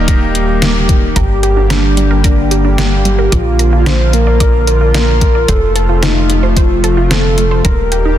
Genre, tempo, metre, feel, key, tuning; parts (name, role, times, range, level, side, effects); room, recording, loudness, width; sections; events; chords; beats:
synthwave; 111 BPM; 4/4; straight; Bb major; A4 = 438 Hz
chorused pulse-width pad; sustained chords; 0.0-8.2 s; C3 to G4; -18 LUFS; equal; sidechain pumping
clear electric grand piano; stabs; 0.0-1.1 s; Bb3 to Bb4; -21 LUFS; left 3 dB; digital delay
tight sequencer bass; bass; 0.0-8.2 s; Eb1 to Bb1; -13 LUFS; equal; sidechain pumping
detuned 8-bit digital drum machine; drums; 0.1-8.0 s; hi-hat, snare drum; -18 LUFS; left 1 dB
electronic kick drum; drums; 0.1-7.8 s; -12 LUFS; equal; overdrive
soft octave-layered synth lead; melody; 1.2-8.2 s; D4 to C5; -16 LUFS; left 2 dB; chorus, ping-pong delay
wide unison pluck; arpeggios; 1.2-8.2 s; G3 to D5; -21 LUFS; right 5 dB; digital delay
light reverb, digital ambience; dense, heavily limited modern master; -9 LUFS; side -11 dB against mid
0.0-8.2 A section
0.0 Eb; 1.2 Gm; 3.3 Bb; 5.5 F; 7.6 Eb
0.08 0.62 | 1.16 1.70 2.24 2.78 | 3.32 3.86 4.40 4.95 | 5.49 6.03 6.57 7.11 | 7.65